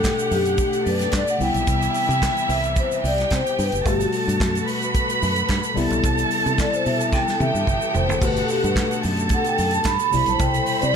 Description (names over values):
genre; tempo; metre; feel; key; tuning
disco; 110 BPM; 4/4; straight; G major; A4 = 441 Hz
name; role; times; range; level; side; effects
vibraphone with soft mallets; melody; 0.0-11.0 s; F#4 to B5; -23 LUFS; equal; none
dark studio violin section; second line; 0.0-11.0 s; D4 to B5; -25 LUFS; right 2 dB; none
tine electric piano; accompaniment; 0.0-11.0 s; Bb2 to A4; -28 LUFS; left 6 dB; none
clear studio string section; sustained chords; 0.0-11.0 s; C3 to C5; -30 LUFS; left 2 dB; none
fingered electric bass; bass; 0.0-11.0 s; F1 to C3; -25 LUFS; right 1 dB; none
warm soul drum kit; drums; 0.0-10.9 s; crash cymbal, handclaps, hi-hat, kick drum, snare drum, toms; -26 LUFS; right 1 dB; none
tube shaker; percussion; 0.0-10.9 s; none; -37 LUFS; right 9 dB; none
room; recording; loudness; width
light reverb; none; -18 LUFS; side -7 dB against mid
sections
0.0-11.0 A section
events
vibraphone solo 0.0-11.0; drum fill 7.1-8.2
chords
0.0 Gmaj9; 1.4 Cmaj7; 3.9 Gmaj9; 5.8 Cmaj7; 8.2 Gmaj9; 10.1 Cmaj7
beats
0.04 0.58 1.13 | 1.68 2.22 2.77 3.31 | 3.86 4.40 4.95 5.49 | 6.04 6.58 7.13 7.67 | 8.22 8.76 9.31 9.86 | 10.40 10.95